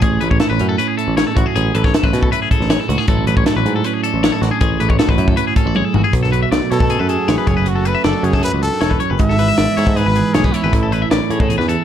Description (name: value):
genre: math rock and midwest emo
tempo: 157 BPM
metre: 4/4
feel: straight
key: A major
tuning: A4 = 440 Hz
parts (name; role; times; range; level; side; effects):
- twelve-string electric guitar; accompaniment; 0.0-11.8 s; E2 to A4; -20 LUFS; right 7 dB; none
- twangy electric guitar; arpeggios; 0.0-11.8 s; F#4 to E5; -21 LUFS; left 9 dB; plate reverb
- picked electric bass; bass; 0.0-11.7 s; E1 to B2; -19 LUFS; equal; none
- crisp fusion drum kit; drums; 0.0-11.8 s; hi-hat, kick drum, snare drum, toms; -18 LUFS; left 1 dB; none
- bright trumpet; melody; 6.7-11.1 s; E4 to E5; -22 LUFS; left 1 dB; plate reverb, analog delay
room: light reverb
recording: dark, warm production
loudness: -13 LUFS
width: side -10 dB against mid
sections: 0.0-6.1 A section; 6.1-11.8 B section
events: drum fill 5.8-6.1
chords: 0.0 Amaj13; 3.1 Bm11/A; 4.6 Amaj9; 6.1 Bm7; 7.5 F#m9; 9.2 C#m7/G#; 10.7 Amaj7